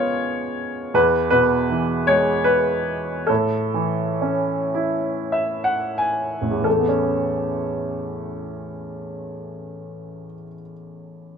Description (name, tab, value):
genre	classical, lyrical solo piano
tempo	28-55 BPM (dotted quarters)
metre	6/8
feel	rubato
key	A major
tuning	A4 = 440 Hz
part	warm baby grand piano	solo	0.0-11.4 s	A1 to G#5	-20 LUFS	equal	none
room	light reverb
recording	none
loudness	-19 LUFS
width	side -6 dB against mid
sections	0.0-6.7 A section; 6.7-10.8 B section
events	slowing down 1.0-6.7; grand piano fill 4.8-6.7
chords	0.0 C#7; 1.0 E; 3.3 A; 6.7 Aadd9